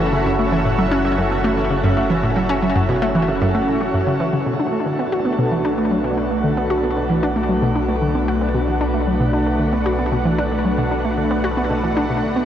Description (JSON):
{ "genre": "ambient, sequencer-driven space music", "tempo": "114 BPM", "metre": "4/4", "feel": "straight", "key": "F# minor, B minor from 4.5 s", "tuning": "A4 = 442 Hz", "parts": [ { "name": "lush unison pad", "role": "sustained chords", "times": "0.0-12.5 s", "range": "A3 to F#5", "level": "-20 LUFS", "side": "equal", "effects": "chorus, phaser" }, { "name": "analog pluck", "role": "riff", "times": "0.0-12.5 s", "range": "F#2 to F#4", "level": "-20 LUFS", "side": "equal", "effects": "chorus, ping-pong delay" }, { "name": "round analog bass", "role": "bass", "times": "0.0-12.5 s", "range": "F#1 to B1", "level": "-26 LUFS", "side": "equal", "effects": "none" }, { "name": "pulsing gated texture", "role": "texture", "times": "0.0-4.5 s", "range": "E5", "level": "-32 LUFS", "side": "right 1 dB", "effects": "chorus, built-in reverb" } ], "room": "wet shimmer reverb, RT60 9.0 s", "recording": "worn, warbling old tape, cassette tape, warbly pitch drift", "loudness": "-16 LUFS", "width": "side -10 dB against mid", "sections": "0.0-4.5 A section; 4.5-12.5 B section", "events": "none", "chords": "0.0 F#m7; 4.5 Bm7", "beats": "| 0.26 0.78 1.31 1.83 | 2.36 2.89 3.41 3.94 | 4.47 4.99 5.52 6.04 | 6.57 7.10 7.62 8.15 | 8.68 9.20 9.73 10.26 | 10.78 11.31 11.84 12.36" }